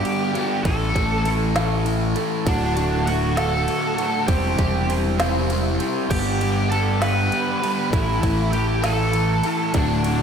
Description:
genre	quiet-loud alternative rock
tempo	66 BPM (dotted quarters)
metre	6/8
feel	straight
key	unclear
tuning	A4 = 440 Hz
part	octave-fuzz lead guitar	melody	0.0-10.2 s	D4 to B5	-26 LUFS	equal	distortion, slapback echo, digital delay
part	crunchy overdriven guitar	riff	0.0-10.2 s	D2 to C5	-26 LUFS	left 11 dB	phaser
part	raw garage guitar	riff	0.0-10.2 s	D2 to C5	-25 LUFS	right 10 dB	overdrive, spring reverb, slapback echo
part	organic electronic drum kit	drums	0.1-10.2 s	crash cymbal, kick drum, ride cymbal, snare drum	-27 LUFS	equal	none
part	overdriven fingered electric bass	bass	0.6-10.2 s	D1 to A1	-23 LUFS	equal	none
room	moderate lush hall reverb, RT60 2.8 s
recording	big arena sound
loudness	-18 LUFS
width	side -7 dB against mid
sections	0.0-10.2 A section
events	none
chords	0.0 G; 0.6 A5; 2.5 D; 4.3 C/E; 6.1 G; 7.9 A5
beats	| 0.64 1.55 | 2.46 3.37 | 4.28 5.19 | 6.10 7.01 | 7.92 8.83 | 9.74

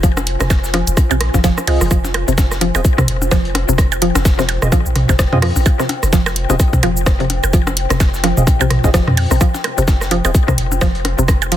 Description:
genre	minimal techno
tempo	128 BPM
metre	4/4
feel	swing 58% on 16ths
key	F minor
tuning	A4 = 440 Hz
part	mallet-like synth pluck	riff	0.0-11.6 s	C3 to F3	-20 LUFS	equal	chorus, phaser, sidechain pumping, ping-pong delay
part	punchy sub bass	bass	0.0-11.6 s	Eb1 to F2	-19 LUFS	equal	sidechain pumping
part	breakbeat sampler-style drum kit	drums	0.0-11.6 s	hi-hat, snare drum	-29 LUFS	left 1 dB	sidechain pumping on hats, high-pass filter on hats, high-pass filter on snare, high-pass filter on room
part	electronic kick drum	drums	0.0-11.4 s	none	-13 LUFS	equal	none
part	garage drum kit	drums	0.0-11.6 s	hi-hat, rim click, shaker	-23 LUFS	left 1 dB	none
part	ethereal airy pad	texture	0.0-11.6 s	F4 to C6	-26 LUFS	left 1 dB	ensemble chorus, built-in reverb, sidechain pumping
part	minimal click drum kit	percussion	0.2-11.5 s	percussion blips, rim click, toms	-20 LUFS	right 1 dB	overdrive, soft clipping on snare, ping-pong delay
part	percussive organ stab	stabs	1.7-10.3 s	C4 to Eb5	-25 LUFS	right 2 dB	analog chorus, ping-pong delay
room	digital ambience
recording	dense, heavily limited modern master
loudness	-12 LUFS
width	side -12 dB against mid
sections	0.0-11.6 A section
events	fade-in on ambient pad 0.0-11.6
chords	0.0 Fm7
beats	| 0.03 0.50 0.97 1.44 | 1.91 2.38 2.85 3.31 | 3.78 4.25 4.72 5.19 | 5.66 6.13 6.60 7.07 | 7.53 8.00 8.47 8.94 | 9.41 9.88 10.35 10.81 | 11.28

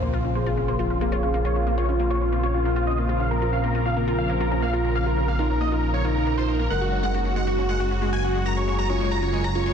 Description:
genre	trance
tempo	137 BPM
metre	4/4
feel	straight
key	Bb minor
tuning	A4 = 440 Hz
part	big supersaw lead	melody	0.0-9.7 s	F4 to Bb5	-28 LUFS	equal	phaser, cassette tape, low-pass filter, ping-pong delay
part	warm velvety synth lead	second line	0.0-9.7 s	Eb4 to C5	-28 LUFS	equal	chorus, tape echo
part	lush unison pad	sustained chords	0.0-9.7 s	Db3 to Ab4	-30 LUFS	equal	chorus
part	wide unison pluck	arpeggios	0.0-9.7 s	Ab3 to Gb4	-31 LUFS	left 4 dB	digital delay
part	fat analog bass	bass	0.0-9.7 s	Gb1 to Bb1	-25 LUFS	equal	none
part	sub drop	sound effects	0.0-1.4 s	none	-32 LUFS	right 1 dB	none
room	light reverb, digital ambience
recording	dense, heavily limited modern master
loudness	-21 LUFS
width	side -7 dB against mid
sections	0.0-9.7 A section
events	impact 0.0-1.4; filter sweep on supersaw synth 0.0-9.7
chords	0.0 Bbmadd9; 6.7 Gbadd9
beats	0.14 0.57 1.01 | 1.45 1.89 2.32 2.76 | 3.20 3.64 4.08 4.51 | 4.95 5.39 5.83 6.27 | 6.70 7.14 7.58 8.02 | 8.46 8.89 9.33

